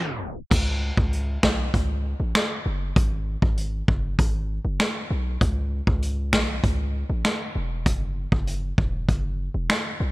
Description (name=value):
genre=dancehall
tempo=98 BPM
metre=4/4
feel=straight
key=C# minor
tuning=A4 = 441 Hz
part: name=hard-hitting 808-style bass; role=bass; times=0.2-10.1 s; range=E1 to C#2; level=-26 LUFS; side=equal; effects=none
part: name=vintage brush drum kit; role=drums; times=0.4-9.8 s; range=crash cymbal, finger snaps, hi-hat, kick drum, snare drum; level=-23 LUFS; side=equal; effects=none
room=little or no reverb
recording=bright 1980s-style digital production, tape stop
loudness=-22 LUFS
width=side -20 dB against mid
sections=0.5-10.1 A section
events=break 0.0-0.5; tape stop 0.0-0.5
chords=none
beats=| 0.51 1.13 1.74 2.35 | 2.96 3.58 4.19 4.80 | 5.41 6.02 6.64 7.25 | 7.86 8.47 9.09 9.70